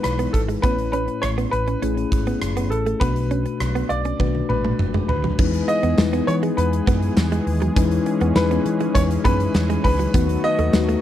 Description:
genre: 1980s-style pop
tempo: 101 BPM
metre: 4/4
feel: straight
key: E major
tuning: A4 = 442 Hz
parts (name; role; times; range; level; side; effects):
- clear baby grand piano; melody; 0.0-11.0 s; A4 to D#5; -25 LUFS; equal; slapback echo
- mellow tine electric piano; accompaniment; 0.0-11.0 s; A2 to C#5; -24 LUFS; left 8 dB; none
- woody fretless electric bass; bass; 0.0-10.9 s; F#1 to E3; -23 LUFS; right 1 dB; none
- gated 80s drum kit; drums; 0.0-11.0 s; crash cymbal, hi-hat, kick drum, rim click, snare drum, tambourine, toms; -22 LUFS; equal; none
- direct-recorded clean electric guitar; riff; 0.2-11.0 s; F#3 to C#4; -27 LUFS; right 6 dB; analog chorus, slapback echo
- brassy analog pad; sustained chords; 5.4-11.0 s; E3 to G#4; -28 LUFS; right 3 dB; chorus
- group handclap; percussion; 6.0-10.9 s; none; -40 LUFS; right 5 dB; none
room: studio ambience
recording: none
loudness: -18 LUFS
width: side -12 dB against mid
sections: 0.0-5.4 A section; 5.4-11.0 B section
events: drum fill 4.2-5.4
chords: 0.0 Emaj7; 0.6 A; 3.0 Bm7; 5.4 Emaj7; 10.1 B7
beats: 0.04 | 0.64 1.23 1.82 2.42 | 3.01 3.61 4.20 4.79 | 5.39 5.98 6.58 7.17 | 7.76 8.36 8.95 9.55 | 10.14 10.73

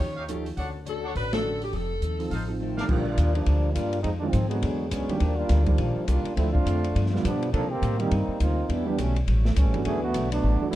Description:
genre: jazz, big band swing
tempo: 207 BPM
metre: 4/4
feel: swing 60% on 8ths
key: Bb major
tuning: A4 = 440 Hz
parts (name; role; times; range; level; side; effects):
- warm saxophone section; melody; 0.0-2.6 s; G4 to C#5; -32 LUFS; left 2 dB; none
- picked steel-string acoustic guitar; accompaniment; 0.0-10.8 s; G2 to C#5; -35 LUFS; left 6 dB; none
- upright bass; bass; 0.0-10.8 s; F1 to C3; -26 LUFS; equal; none
- open jazz drum kit; drums; 0.0-10.8 s; crash cymbal, hi-hat, kick drum, ride cymbal, snare drum; -32 LUFS; equal; none
- clear trumpet section; stabs; 0.2-2.9 s; D4 to F#5; -36 LUFS; equal; none
- warm concert grand piano; accompaniment; 0.3-10.8 s; D3 to C5; -31 LUFS; right 4 dB; none
- clear trombone section; second line; 2.6-10.8 s; D3 to A4; -28 LUFS; right 1 dB; none
room: light reverb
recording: dark, warm production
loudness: -23 LUFS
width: side -14 dB against mid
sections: 0.0-2.9 A section; 2.9-10.8 B section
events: band accent 1.3; drum fill 2.6; trombone section solo 2.9-10.8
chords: 0.0 Eb9; 0.6 Dmaj7; 1.7 F7; 2.9 Bb6; 4.0 Fm7; 4.6 E13; 5.2 Ebmaj9; 6.4 Dm7; 7.0 G7; 7.5 Cm7; 8.7 Em7; 9.3 A7; 9.9 D69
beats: 0.28 | 0.57 0.86 1.15 1.44 | 1.73 2.02 2.31 2.60 | 2.89 3.18 3.47 3.76 | 4.05 4.34 4.63 4.92 | 5.21 5.50 5.79 6.08 | 6.37 6.66 6.95 7.24 | 7.53 7.82 8.11 8.40 | 8.70 8.98 9.28 9.57 | 9.86 10.15 10.44 10.73

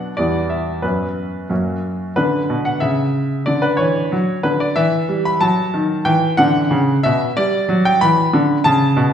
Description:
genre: classical-period piano sonatina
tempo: 92 BPM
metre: 2/4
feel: straight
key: unclear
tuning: A4 = 439 Hz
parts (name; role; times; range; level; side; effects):
- clear baby grand piano; solo; 0.0-9.1 s; E2 to B5; -15 LUFS; equal; none
room: wet recital hall reverb, RT60 1.4 s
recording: heard from further back in the room, nothing above 10.4 kHz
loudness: -15 LUFS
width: side -8 dB against mid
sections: 0.0-2.2 A section; 2.2-9.1 B section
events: none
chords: 0.2 Em; 0.8 F#sus4; 1.5 F#; 2.2 Bm/D; 2.8 N.C.; 3.5 Dmaj13; 4.8 Em; 5.4 D#dim; 6.1 E5; 7.4 Em7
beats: 0.17 | 0.84 1.51 | 2.17 2.83 | 3.48 4.13 | 4.78 5.43 | 6.08 6.73 | 7.38 8.01 | 8.65

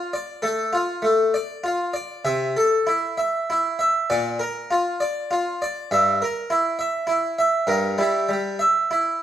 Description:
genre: classical, baroque-style suite movement for harpsichord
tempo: 66 BPM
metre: 4/4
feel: rubato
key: D minor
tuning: A4 = 441 Hz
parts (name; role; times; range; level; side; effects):
- harpsichord; solo; 0.0-9.2 s; G2 to E5; -20 LUFS; equal; none
room: moderate stone room reverb, RT60 1.3 s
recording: none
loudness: -20 LUFS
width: side -11 dB against mid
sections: 0.0-9.2 A section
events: none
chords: 0.0 Dm; 2.3 Am/C; 4.1 Bb; 5.9 Edim/G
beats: 0.43 1.35 | 2.25 3.17 4.10 5.00 | 5.91 6.80 7.69 8.61

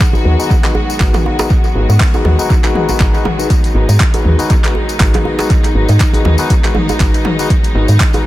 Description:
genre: afro house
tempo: 120 BPM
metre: 4/4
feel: swing 56% on 16ths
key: G# minor pentatonic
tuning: A4 = 440 Hz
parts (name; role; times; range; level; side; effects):
- rich studio string section; sustained chords; 0.0-8.3 s; D#3 to F#4; -21 LUFS; left 1 dB; sidechain pumping
- deep house drum kit; drums; 0.0-8.2 s; handclaps, hi-hat, toms; -20 LUFS; equal; small room ambience, analog delay
- electronic kick drum; drums; 0.0-8.1 s; none; -12 LUFS; equal; small room ambience
- tambourine; percussion; 0.0-8.2 s; none; -28 LUFS; left 5 dB; analog delay
- overdriven tine electric piano; stabs; 0.1-8.3 s; D#4 to B4; -19 LUFS; left 3 dB; sidechain pumping, low-pass filter, analog delay
- djembe; percussion; 0.1-8.2 s; none; -22 LUFS; right 2 dB; analog delay
- woody FM bass; bass; 0.2-8.0 s; G#1 to G#2; -12 LUFS; equal; sidechain pumping
room: little or no reverb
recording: echo-heavy mix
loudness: -10 LUFS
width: side -16 dB against mid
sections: 0.0-8.3 A section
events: filter sweep on tine electric piano 0.0-8.3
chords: 0.0 G#m7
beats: 0.00 0.50 1.00 | 1.50 2.00 2.50 3.00 | 3.50 4.00 4.50 5.00 | 5.50 6.00 6.50 7.00 | 7.50 8.00

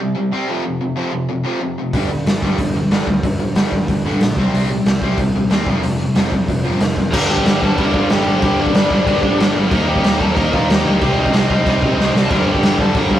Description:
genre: punk rock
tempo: 185 BPM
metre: 4/4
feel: straight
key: G minor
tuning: A4 = 440 Hz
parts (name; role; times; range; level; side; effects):
- distorted electric guitar; riff; 0.0-13.2 s; F2 to Eb4; -23 LUFS; left 4 dB; overdrive
- raw garage guitar; riff; 0.0-13.2 s; F2 to Eb4; -23 LUFS; right 4 dB; overdrive
- picked electric bass; bass; 1.9-13.2 s; F1 to Eb3; -23 LUFS; equal; none
- raw garage drum kit; drums; 1.9-13.2 s; crash cymbal, hi-hat, kick drum, snare drum; -16 LUFS; equal; none
- lead guitar through a small cranked amp; melody; 7.1-13.2 s; D4 to Bb5; -21 LUFS; left 1 dB; overdrive
- high-gain distorted guitar; riff; 7.1-13.2 s; G2 to Eb4; -23 LUFS; equal; distortion
room: light reverb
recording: rough rehearsal-room recording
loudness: -14 LUFS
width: side -12 dB against mid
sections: 0.0-7.1 A section; 7.1-13.2 B section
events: drum fill 12.0-12.3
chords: 0.5 F5; 1.9 G5; 4.4 C5; 5.7 F5; 7.1 Gm; 9.7 Eb; 11.0 Cm; 12.3 Gm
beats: 0.32 | 0.64 0.96 1.29 1.61 | 1.94 2.26 2.59 2.91 | 3.24 3.56 3.89 4.21 | 4.54 4.86 5.19 5.51 | 5.84 6.16 6.49 6.81 | 7.14 7.46 7.78 8.11 | 8.43 8.75 9.08 9.40 | 9.72 10.05 10.37 10.69 | 11.02 11.34 11.66 11.98 | 12.31 12.63 12.95

